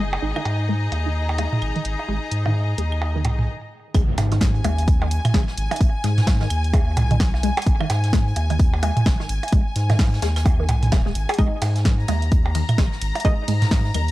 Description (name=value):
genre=minimal techno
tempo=129 BPM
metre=4/4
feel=swing 60% on 16ths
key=G# minor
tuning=A4 = 440 Hz
part: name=resonant blip pluck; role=riff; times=0.0-14.0 s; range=D#3 to G#4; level=-29 LUFS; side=left 1 dB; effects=phaser, analog chorus, sidechain pumping, analog delay
part: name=saturated sub bass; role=bass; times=0.0-14.1 s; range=D#1 to G#2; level=-22 LUFS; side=equal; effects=tube saturation, sidechain pumping
part: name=clear symphonic string section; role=texture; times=0.0-14.1 s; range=D#4 to A#5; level=-30 LUFS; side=left 2 dB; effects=sidechain pumping
part: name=electronic percussion blips, claves and toms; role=percussion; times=0.1-14.1 s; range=none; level=-25 LUFS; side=right 2 dB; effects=tape echo
part: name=filtered dub chord stab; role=stabs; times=0.2-0.3, 11.4-13.3 s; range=G#3 to D#5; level=-29 LUFS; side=right 2 dB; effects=chorus, tape echo
part: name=punchy analog drum machine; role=drums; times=0.5-14.1 s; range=hi-hat, ride cymbal, snare drum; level=-29 LUFS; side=equal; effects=low-pass filter on snare, low-pass filter on hats, low-pass filter on cymbals
part: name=electronic kick drum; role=drums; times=3.9-13.8 s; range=none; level=-19 LUFS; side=equal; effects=none
part: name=jazz brush drum kit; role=drums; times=3.9-14.1 s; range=hi-hat, snare drum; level=-37 LUFS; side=right 1 dB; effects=high-pass filter on hats, high-pass filter on snare, high-pass filter on room
part: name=impact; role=sound effects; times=3.9-5.8 s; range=none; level=-30 LUFS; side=equal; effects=none
room=little or no reverb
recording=dry, gritty hardware recording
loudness=-18 LUFS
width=side -17 dB against mid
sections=0.0-3.9 A section; 3.9-14.1 B section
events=filter sweep on synth arpeggio sound 0.0-3.9; stop 3.5-3.9; drop 3.9-14.1; impact 3.9-5.8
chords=0.0 G#5